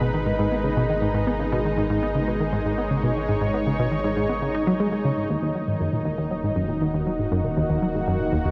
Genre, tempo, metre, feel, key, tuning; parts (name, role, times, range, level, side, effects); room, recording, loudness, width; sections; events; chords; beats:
ambient, sequencer-driven space music; 119 BPM; 4/4; straight; G# minor; A4 = 440 Hz
lush unison pad; sustained chords; 0.0-8.5 s; D#3 to C#5; -28 LUFS; equal; chorus
tight sequenced synth; riff; 0.0-8.5 s; D#2 to D#4; -26 LUFS; equal; chorus, analog delay
round analog bass; bass; 0.0-8.5 s; D#1 to G#1; -36 LUFS; equal
wet huge ambient reverb, RT60 8.2 s; -24 LUFS; mono
0.0-8.5 A section
0.0 G#m; 5.3 D#m
0.26 0.77 | 1.27 1.77 2.28 2.78 | 3.29 3.79 4.29 4.80 | 5.30 5.81 6.31 6.82 | 7.32 7.83 8.33